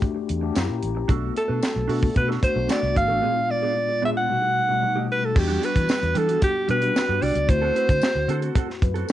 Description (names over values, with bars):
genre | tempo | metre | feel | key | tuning
polished 1980s jazz-funk pop | 112 BPM | 4/4 | straight | unclear | A4 = 440 Hz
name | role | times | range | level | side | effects
mellow tine electric piano | accompaniment | 0.0-9.1 s | Bb2 to A#5 | -28 LUFS | left 8 dB | medium stereo tremolo, lush chorus, cassette tape
mellow electric guitar | riff | 0.0-9.1 s | G3 to B4 | -31 LUFS | right 9 dB | wide subtle chorus, cassette tape
tight funk drum kit | drums | 0.0-9.1 s | crash cymbal, hi-hat, kick drum, snare drum | -23 LUFS | equal | cassette tape
vintage muted fingered electric bass | bass | 0.3-9.0 s | Ab1 to E3 | -26 LUFS | equal | none
tambourine | percussion | 0.6-9.1 s | none | -40 LUFS | left 12 dB | none
clear alto saxophone | melody | 1.4-8.6 s | G4 to F#5 | -23 LUFS | right 2 dB | none
room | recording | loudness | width
light reverb | home recording on cassette, nothing above 10.6 kHz | -20 LUFS | side -13 dB against mid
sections
0.0-5.4 A section; 5.4-9.1 B section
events
tine electric piano fill 0.3-1.1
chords
0.0 Em11; 0.6 F#7b9; 1.1 Bm7; 3.2 Bb7b9; 4.3 B7b13; 5.4 Em9; 7.5 D7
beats
0.02 0.56 | 1.09 1.62 2.16 2.69 | 3.22 3.76 4.29 4.83 | 5.36 5.89 6.42 6.96 | 7.49 8.02 8.55 9.09